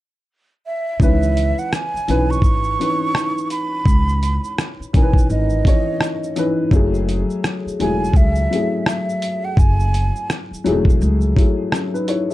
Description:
lo-fi hip hop; 84 BPM; 4/4; swing 60% on 16ths; C# minor; A4 = 442 Hz
breathy mellow silver concert flute; melody; 0.7-10.3 s; D#5 to C#6; -24 LUFS; right 3 dB
dark upright piano; accompaniment; 1.0-12.3 s; D#3 to E5; -21 LUFS; left 2 dB; cassette tape, plate reverb
upright bass; bass; 1.0-11.3 s; E1 to C#2; -20 LUFS; equal
dusty soul sampler-style drum kit; drums; 1.0-12.3 s; hi-hat, kick drum, rim click, shaker; -17 LUFS; equal
light reverb; dark, warm production; -16 LUFS; side -16 dB against mid
0.0-1.0 A section; 1.0-12.3 B section
0.0 N.C.; 1.0 C#m9; 6.7 F#m9

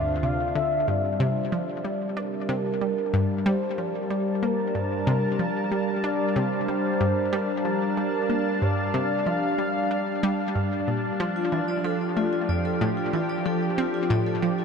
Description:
ambient, sequencer-driven space music; 93 BPM; 4/4; straight; G minor; A4 = 439 Hz
expressive synth lead; melody; 0.0-10.2 s; Bb4 to F5; -30 LUFS; equal; lush chorus, ping-pong delay
lush unison pad; sustained chords; 0.0-14.6 s; D3 to A5; -26 LUFS; equal; chorus
analog pluck; riff; 0.0-14.5 s; F2 to D4; -28 LUFS; equal; chorus, ping-pong delay
fat analog bass; bass; 0.0-0.8 s; D2; -34 LUFS; equal
vibraphone with medium hard mallets; arpeggios; 11.4-14.6 s; F4 to D5; -29 LUFS; left 4 dB; auto-pan, ping-pong delay
wet huge ambient reverb, RT60 8.3 s; -23 LUFS; side -6 dB against mid
0.9-14.6 A section
0.0 Dm7; 0.9 Gm7; 11.2 F6

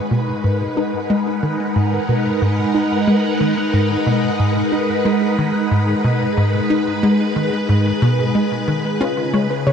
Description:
ambient, sequencer-driven space music; 91 BPM; 4/4; straight; G# minor; A4 = 440 Hz
phased string machine; sustained chords; 0.0-9.7 s; C#3 to F#5; -18 LUFS; equal; ensemble chorus, phaser
tight sequencer bass; riff; 0.1-9.7 s; G#2 to D#4; -18 LUFS; equal; wide subtle chorus, ping-pong delay
wide unison pluck; arpeggios; 9.0-9.7 s; E#4 to C#5; -29 LUFS; left 3 dB; auto-pan, ping-pong delay
wet shimmer reverb, RT60 7.8 s; -15 LUFS; side -7 dB against mid
0.0-9.7 A section
0.0 G#m7; 9.0 C#7

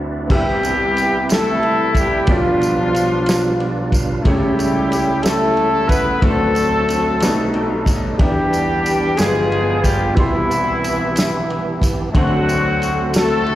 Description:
slow gospel; 61 BPM (dotted quarters); 6/8; straight; A4 = 441 Hz
warm grand piano; accompaniment; 0.0-13.6 s; G1 to C6; -22 LUFS; left 1 dB
percussive tonewheel organ; sustained chords; 0.0-13.6 s; B2 to G5; -23 LUFS; right 3 dB; slow rotary speaker, overdrive, chorus vibrato
warm horn section; melody; 0.3-13.6 s; E3 to B4; -18 LUFS; left 1 dB; slapback echo
warm soul drum kit; drums; 0.3-13.6 s; crash cymbal, kick drum, ride cymbal, snare drum; -19 LUFS; equal
tambourine; percussion; 0.6-13.4 s; -32 LUFS; right 3 dB
light reverb, small room ambience; live gig heard through the venue's PA, recital hall reverb; -14 LUFS; side -14 dB against mid
0.3-13.6 A section
break 0.0-0.3; tonewheel organ fill 0.0-0.3, 3.3-4.3, 7.2-8.2
0.3 Cmaj7; 2.3 G7/B; 4.3 A7/C#; 6.2 D7; 7.2 B7b13; 8.2 Em7; 9.2 G7b9; 10.2 Cmaj7; 12.1 D7

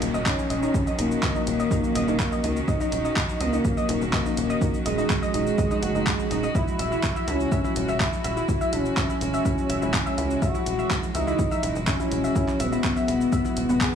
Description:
melodic techno; 124 BPM; 4/4; straight; Eb phrygian; A4 = 441 Hz
expressive portamento lead; melody; 0.0-13.9 s; Ab3 to F#4; -26 LUFS; left 1 dB; analog chorus, sidechain pumping, digital delay
rich chamber string section; sustained chords; 0.0-13.9 s; Eb3 to Gb4; -32 LUFS; right 1 dB; vintage 12-bit sampler grit, sidechain pumping
tight sequencer bass; bass; 0.0-13.9 s; Eb1 to Db2; -30 LUFS; equal; sidechain pumping
deep house drum kit; drums; 0.0-13.9 s; handclaps, hi-hat, shaker; -31 LUFS; equal; sidechain pumping on perc, sidechain pumping on hats
downlifter; sound effects; 0.0-2.7 s; -41 LUFS; right 1 dB
warbly dusty pluck; arpeggios; 0.1-13.9 s; B3 to E6; -29 LUFS; equal; chorus, cassette tape, sidechain pumping, digital delay
electronic kick drum; drums; 0.3-13.9 s; -27 LUFS; equal
light reverb; small room ambience; -22 LUFS; side -8 dB against mid
0.0-13.9 A section
0.0 Ebm7; 6.6 Eadd9/Eb

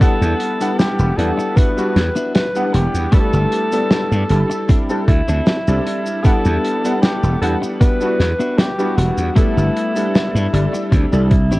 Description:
vaporwave; 77 BPM; 4/4; straight; A4 = 440 Hz
clear alto saxophone; melody; 0.0-11.6 s; E4 to B4; -22 LUFS; equal; tape echo
warm electric grand piano; accompaniment; 0.0-11.3 s; G3 to F#5; -21 LUFS; equal; ensemble chorus, tape echo
clean electric guitar; riff; 0.0-11.6 s; A3 to A4; -24 LUFS; left 2 dB; lush chorus, vintage 12-bit sampler grit, tape echo
slap bass; bass; 0.0-11.6 s; E1 to G2; -16 LUFS; equal
electronic kick drum; drums; 0.0-11.5 s; -13 LUFS; equal
warm soul drum kit; drums; 0.0-11.6 s; cabasa, hi-hat, snare drum; -20 LUFS; equal
light reverb; worn, warbling old tape, cassette tape, warbly pitch drift; -14 LUFS; side -19 dB against mid
0.0-11.6 A section
0.0 Em9; 3.1 G69; 4.7 D9sus4; 6.2 Em9; 9.4 G69; 10.9 D9sus4

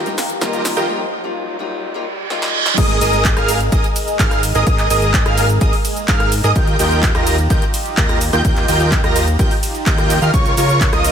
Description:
EDM, festival progressive house; 127 BPM; 4/4; straight; A4 = 440 Hz
fingerpicked steel-string acoustic guitar; accompaniment; 0.0-2.8 s; G3 to F4; -26 LUFS; left 5 dB; sidechain pumping, digital delay
lush unison pad; sustained chords; 0.0-11.1 s; Ab3 to Bb5; -27 LUFS; equal
dense compressed supersaw; riff; 0.0-11.1 s; F4 to Bb5; -20 LUFS; right 2 dB; sidechain pumping, low-pass filter, digital delay
fat analog bass; bass; 0.0-11.1 s; Ab1 to Ab2; -20 LUFS; equal; sidechain pumping
riser and reverse cymbal; sound effects; 0.0-2.8 s; -23 LUFS; right 5 dB
big-room dance drum kit; drums; 0.1-11.1 s; crash cymbal, handclaps, hi-hat, ride cymbal, rim click, shaker, snare drum; -22 LUFS; right 1 dB; high-pass filter on snare, high-pass filter on hats, high-pass filter on perc, high-pass filter on cymbals
electronic kick drum; drums; 0.4-10.9 s; -17 LUFS; equal; high-pass filter on kick
wide unison lead; arpeggios; 2.8-11.1 s; Db6 to Bb6; -22 LUFS; right 1 dB; ensemble chorus, sidechain pumping, digital delay
light reverb; high-pass filter; -13 LUFS; side -8 dB against mid
0.0-2.8 A section; 2.8-11.1 B section
build-up 0.0-2.8; drum fill 0.0-0.9, 2.3-2.8; riser 0.0-2.8; filter sweep 0.0-2.8; reverse cymbal 1.8-2.8; drop 2.8-11.1
0.0 Ebadd9; 2.8 Absus2; 6.6 Ebadd9; 10.3 Bbm/Db

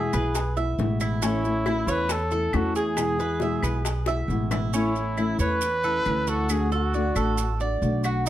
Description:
latin, Cuban son and guajira; 137 BPM; 4/4; straight; A major; A4 = 439 Hz
breathy trumpet; melody; 0.0-8.3 s; D#4 to B4; -28 LUFS; equal; slapback echo
nylon-string guitar; accompaniment; 0.0-8.3 s; B2 to F#4; -28 LUFS; left 3 dB
Cuban tres; arpeggios; 0.0-8.3 s; C#4 to E5; -30 LUFS; right 4 dB
upright bass; bass; 0.0-8.3 s; A1 to E2; -27 LUFS; right 1 dB
bongos; percussion; 0.1-4.6 s; -33 LUFS; left 5 dB
claves; percussion; 0.1-8.3 s; -37 LUFS; left 2 dB
maracas; percussion; 0.1-8.3 s; -37 LUFS; right 8 dB
little or no reverb; close, detailed microphones; -22 LUFS; side -12 dB against mid
0.0-4.7 A section; 4.7-8.3 A section
drum fill 4.1-4.7
0.0 E; 1.2 A; 3.0 E; 4.7 A; 6.5 D

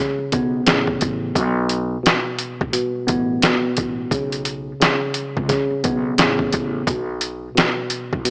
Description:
hip hop, boom-bap hip-hop; 87 BPM; 4/4; swing 60% on 16ths; A4 = 440 Hz
mellow tine electric piano; accompaniment; 0.0-8.3 s; B2 to B3; -25 LUFS; equal; high-pass filter, low-pass filter
upright bass; bass; 0.2-8.2 s; A1 to C#2; -28 LUFS; equal
boom bap sampler-style drum kit; drums; 0.3-8.3 s; hi-hat, kick drum, snare drum; -22 LUFS; equal
light reverb; dry, gritty hardware recording, small speaker sound; -20 LUFS; mono
0.0-8.3 A section
0.0 Aadd9; 1.4 Asus2; 4.1 Aadd9; 6.9 N.C.

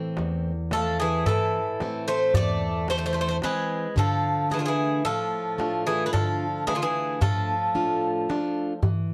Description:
greek folk, Greek bouzouki band; 111 BPM (eighths); 9/8; straight; A4 = 440 Hz
picked plugged-in steel-string acoustic guitar; accompaniment; 0.0-9.1 s; E2 to F5; -31 LUFS; equal
darbuka; percussion; 0.2-9.1 s; -29 LUFS; equal
Greek bouzouki; melody; 0.7-8.8 s; F4 to D5; -29 LUFS; equal
Greek bouzouki; second line; 0.7-8.8 s; D3 to A3; -33 LUFS; equal
moderate studio reverb, RT60 0.6 s; dark, warm production; -25 LUFS; mono
0.0-9.1 A section
0.0 Am; 4.0 Dm

